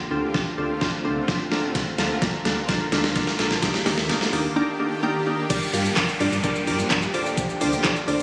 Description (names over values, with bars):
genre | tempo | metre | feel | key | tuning
dance-pop | 128 BPM | 4/4 | straight | G minor | A4 = 440 Hz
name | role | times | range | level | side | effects
shimmering ambient pad | sustained chords | 0.0-8.2 s | D3 to A4 | -31 LUFS | equal | chorus, built-in reverb, sidechain pumping
glassy wavetable pluck | accompaniment | 0.1-8.2 s | Bb3 to F5 | -28 LUFS | equal | chorus, sidechain pumping
sub bass with octave | bass | 0.1-8.2 s | D1 to G2 | -34 LUFS | equal | sidechain pumping
pop drum kit | drums | 0.3-8.2 s | crash cymbal, handclaps, hi-hat, kick drum, shaker, snare drum | -27 LUFS | equal | none
downlifter | sound effects | 5.5-8.2 s | none | -33 LUFS | equal | none
room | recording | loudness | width
moderate lush hall reverb, RT60 1.9 s, digital ambience | recorded on a phone in the room, studio reverb, compression | -23 LUFS | mono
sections
0.0-5.5 A section; 5.5-8.2 B section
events
build-up 0.0-5.5; drum fill 0.0-4.6; drop 5.5-8.2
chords
0.0 Dm7; 1.5 Bbmaj7/D; 3.6 Ebmaj7; 5.5 Gm7; 7.1 Dm7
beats
0.34 0.81 1.28 | 1.75 2.22 2.69 3.16 | 3.62 4.09 4.56 5.03 | 5.50 5.97 6.44 6.91 | 7.38 7.84